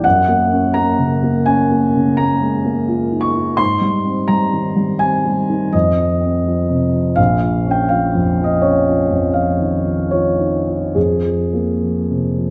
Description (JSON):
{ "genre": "classical, impressionist solo piano", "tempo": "70-87 BPM", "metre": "5/4", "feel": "rubato", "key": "unclear", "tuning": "A4 = 440 Hz", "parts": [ { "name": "warm concert grand piano", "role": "solo", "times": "0.0-12.5 s", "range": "Bb1 to Db6", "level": "-16 LUFS", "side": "equal", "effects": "none" } ], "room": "wet scoring stage reverb, RT60 1.5 s", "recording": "none", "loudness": "-16 LUFS", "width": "mono", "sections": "0.0-12.5 A section", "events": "none", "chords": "0.0 Gbmaj7; 3.6 Abmaj9; 5.7 F5; 7.2 Bbm; 11.0 Fmadd11" }